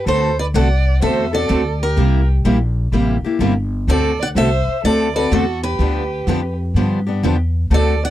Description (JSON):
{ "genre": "acoustic string swing (jazz manouche)", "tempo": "126 BPM", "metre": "4/4", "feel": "swing 66% on 8ths", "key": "unclear", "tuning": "A4 = 442 Hz", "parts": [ { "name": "picked steel-string acoustic guitar", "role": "melody", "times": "0.0-8.1 s", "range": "A4 to F#5", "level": "-23 LUFS", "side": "equal", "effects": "none" }, { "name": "warm violin", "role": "second line", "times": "0.0-8.1 s", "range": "F#4 to D5", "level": "-24 LUFS", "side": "right 6 dB", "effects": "none" }, { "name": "picked steel-string acoustic guitar", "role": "accompaniment", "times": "0.1-7.9 s", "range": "C3 to A4", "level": "-20 LUFS", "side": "left 5 dB", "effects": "none" }, { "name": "picked steel-string acoustic guitar", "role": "accompaniment", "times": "0.1-7.9 s", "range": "C3 to A4", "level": "-22 LUFS", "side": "right 8 dB", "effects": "none" }, { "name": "upright bass", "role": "bass", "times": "0.1-8.1 s", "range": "G1 to G2", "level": "-18 LUFS", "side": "equal", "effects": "none" } ], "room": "little or no reverb", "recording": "dry, close 1970s-style studio recording", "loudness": "-15 LUFS", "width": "side -13 dB against mid", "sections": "0.1-8.1 A section", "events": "none", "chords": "0.1 D7; 2.0 C7; 3.9 D7; 5.8 G7" }